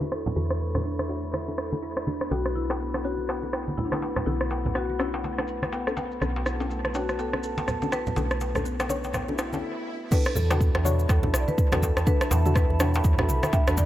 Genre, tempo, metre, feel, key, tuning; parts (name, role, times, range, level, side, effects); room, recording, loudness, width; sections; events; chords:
afro house; 123 BPM; 4/4; swing 59% on 16ths; B minor; A4 = 440 Hz
marimba with medium hard mallets; melody; 0.0-13.9 s; D4 to E5; -34 LUFS; left 3 dB; analog delay
dark analog pad; sustained chords; 0.0-13.9 s; A4 to C#6; -37 LUFS; right 1 dB; chorus, sidechain pumping
deep mellow chord stab; stabs; 0.0-13.9 s; C#4 to C#5; -34 LUFS; left 3 dB; chorus, sidechain pumping, dub echo
woody FM bass; bass; 0.0-13.9 s; B1 to E2; -29 LUFS; equal; sidechain pumping
congas; percussion; 0.0-13.9 s; -33 LUFS; right 2 dB
kalimba; arpeggios; 0.1-13.9 s; A3 to E5; -35 LUFS; right 2 dB; sidechain pumping, analog delay
deep house drum kit; drums; 0.1-13.8 s; crash cymbal, rim click, toms; -32 LUFS; equal; low-pass filter on cymbals, low-pass filter on snare, low-pass filter on toms, dub echo
cabasa; percussion; 2.3-13.9 s; -39 LUFS; left 2 dB
darbuka; percussion; 2.3-13.9 s; -37 LUFS; left 2 dB; dub echo
swell; sound effects; 9.3-10.1 s; -38 LUFS; left 3 dB
electronic kick drum; drums; 10.1-13.9 s; -23 LUFS; equal
light reverb, small room ambience; echo-heavy mix, low-pass filter; -24 LUFS; side -13 dB against mid
0.0-10.1 A section; 10.1-13.9 B section
filter sweep on kalimba 0.0-10.1; filter sweep on synth stab 0.0-10.1; filter sweep on analog synth pad 0.0-10.1; filter sweep 0.0-10.1; swell 9.3-10.1; stop 9.6-10.1; drop 10.1-13.9
0.0 E7sus4; 2.3 Bm7